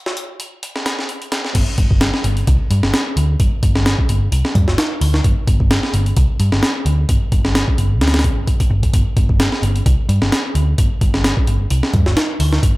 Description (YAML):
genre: breakbeat, breaks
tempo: 130 BPM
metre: 4/4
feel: swing 55% on 16ths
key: unclear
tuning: A4 = 440 Hz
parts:
  - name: breakbeat sampler-style drum kit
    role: drums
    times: 0.1-12.7 s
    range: crash cymbal, hi-hat, kick drum, snare drum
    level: -16 LUFS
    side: equal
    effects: high-pass filter on hats, high-pass filter on snare, high-pass filter on cymbals, high-pass filter on kick, high-pass filter on room
  - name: hollow-body short-scale picked electric bass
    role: bass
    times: 1.6-12.7 s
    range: G1 to G2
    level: -16 LUFS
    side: equal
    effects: tube saturation
room: light reverb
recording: none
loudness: -14 LUFS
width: side -20 dB against mid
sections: 0.0-1.6 A section; 1.6-12.8 B section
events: drop 1.6-12.8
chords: none